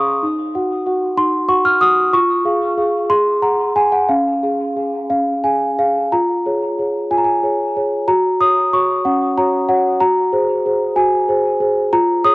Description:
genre	classical, lullaby for celesta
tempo	62 BPM (dotted quarters)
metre	6/8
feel	straight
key	Db major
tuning	A4 = 440 Hz
part	celesta	solo	0.0-12.3 s	Db4 to F6	-14 LUFS	equal	tape echo
room	little or no reverb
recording	dry, close 1970s-style studio recording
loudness	-14 LUFS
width	side -22 dB against mid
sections	0.0-6.1 A section; 6.1-12.3 B section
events	none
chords	0.2 Ebm13; 2.1 Db/F; 3.1 Ab9; 4.1 Db; 6.1 Db/F; 8.1 Gb5; 10.0 Ab7/Gb

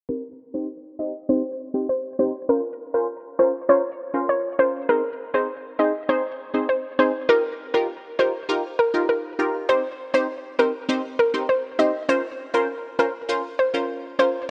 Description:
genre	dancehall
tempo	100 BPM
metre	4/4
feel	straight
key	C phrygian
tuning	A4 = 440 Hz
part	hollow square pluck	melody	0.1-14.3 s	Bb4 to Eb5	-24 LUFS	equal	chorus, low-pass filter, tape echo
part	punchy chord stab	accompaniment	0.1-14.5 s	C4 to C5	-28 LUFS	equal	chorus, low-pass filter
room	light reverb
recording	nothing above 10.8 kHz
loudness	-23 LUFS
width	mono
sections	0.1-9.7 A section; 9.7-14.5 B section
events	filter sweep 0.1-9.7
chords	0.1 Cm; 2.5 Bbmadd9; 4.9 Ab; 7.3 Ebadd9; 9.7 Cm; 12.1 Bbmadd9

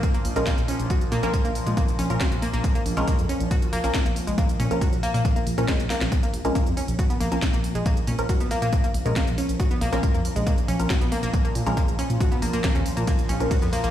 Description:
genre	driving peak-time techno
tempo	138 BPM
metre	4/4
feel	straight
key	Bb minor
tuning	A4 = 437 Hz
part	analog drone	drone	0.0-13.9 s	Bb2 to F3	-32 LUFS	equal	chorus, sidechain pumping
part	electronic kick drum	drums	0.0-13.6 s	none	-23 LUFS	equal	overdrive
part	techno drum kit	drums	0.0-13.9 s	hi-hat, ride cymbal, snare drum	-33 LUFS	equal	sidechain pumping on hats, sidechain pumping on cymbals
part	analog pluck	riff	0.1-13.9 s	Ab3 to Gb4	-29 LUFS	left 1 dB	chorus, tube saturation, sidechain pumping, ping-pong delay
part	dark detuned saw bass	bass	0.2-13.9 s	Bb1 to Bb2	-27 LUFS	equal	sidechain pumping
part	filtered dub chord stab	stabs	0.4-13.5 s	F3 to Bb4	-30 LUFS	left 1 dB	phaser, sidechain pumping, dub echo
room	light reverb, digital ambience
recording	played on a big sound system in a bare room, stone room reverb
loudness	-21 LUFS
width	side -11 dB against mid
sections	0.0-13.9 A section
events	drum fill 5.9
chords	0.0 Bbm

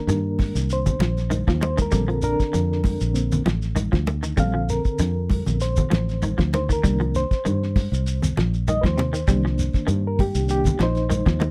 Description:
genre	afrobeat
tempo	98 BPM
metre	4/4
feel	swing 54% on 16ths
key	C dorian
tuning	A4 = 440 Hz
part	reed electric piano	accompaniment	0.0-11.5 s	D3 to F5	-29 LUFS	equal	medium tremolo
part	semi-hollow electric guitar	arpeggios	0.1-11.5 s	C3 to G3	-31 LUFS	equal	ensemble chorus
part	fingered electric bass	bass	0.1-11.5 s	A1 to G2	-26 LUFS	equal	none
part	cloth-damped thuddy drum kit	drums	0.1-11.5 s	hi-hat, kick drum, snare drum	-25 LUFS	equal	none
part	shekere	percussion	0.1-11.5 s	none	-33 LUFS	equal	none
part	congas	percussion	0.4-11.5 s	none	-30 LUFS	equal	none
room	little or no reverb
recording	dry, close 1970s-style studio recording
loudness	-22 LUFS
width	mono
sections	0.0-11.5 A section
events	reed electric piano solo 0.0-11.5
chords	0.0 Cm7; 1.9 Bbmaj7; 6.8 Cm7

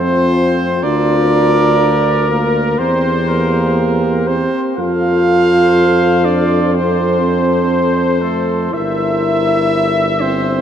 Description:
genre	classical, brass quintet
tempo	61 BPM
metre	4/4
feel	rubato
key	F major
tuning	A4 = 443 Hz
part	warm cornet	melody	0.0-10.6 s	Bb4 to E5	-20 LUFS	left 5 dB	none
part	warm trumpet	second line	0.0-10.6 s	A4 to F5	-20 LUFS	right 4 dB	none
part	warm French horn	accompaniment	0.0-10.4 s	F4 to Bb4	-21 LUFS	left 4 dB	none
part	warm euphonium	accompaniment	0.0-10.6 s	A3 to F4	-16 LUFS	right 2 dB	none
part	warm tuba	bass	0.0-10.6 s	G1 to F2	-18 LUFS	equal	none
room	wet cathedral reverb, RT60 5.2 s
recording	in a vast, echoing space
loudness	-12 LUFS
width	side -9 dB against mid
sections	0.0-10.6 A section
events	none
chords	0.0 F5; 0.8 Bb/D; 2.8 C7/E; 4.8 F; 8.7 Edim/G

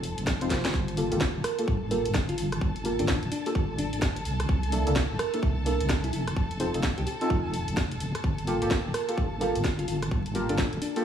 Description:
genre	UK garage, two-step garage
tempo	128 BPM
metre	4/4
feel	swing 62% on 16ths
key	G minor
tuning	A4 = 440 Hz
part	warm studio violin section	sustained chords	0.0-11.0 s	A4 to A5	-38 LUFS	left 2 dB	sidechain pumping
part	deep soft wobble bass	bass	0.0-10.8 s	D1 to C2	-30 LUFS	equal	chorus
part	garage drum kit	drums	0.0-11.0 s	hi-hat, rim click, snare drum	-32 LUFS	equal	none
part	electronic kick drum	drums	0.3-10.7 s	none	-28 LUFS	equal	none
part	deep mellow chord stab	stabs	0.4-11.0 s	Bb3 to C5	-31 LUFS	equal	chorus, cassette tape, dub echo
part	bell-like FM electric piano	melody	1.4-11.0 s	D4 to Bb4	-34 LUFS	right 2 dB	chorus, cassette tape, dub echo
room	light reverb, digital ambience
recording	vinyl crackle, studio reverb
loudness	-25 LUFS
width	side -9 dB against mid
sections	0.0-11.0 A section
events	drum fill 0.5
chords	0.0 F7; 0.7 Gm9; 4.3 C13; 6.1 F7; 8.2 Gm9

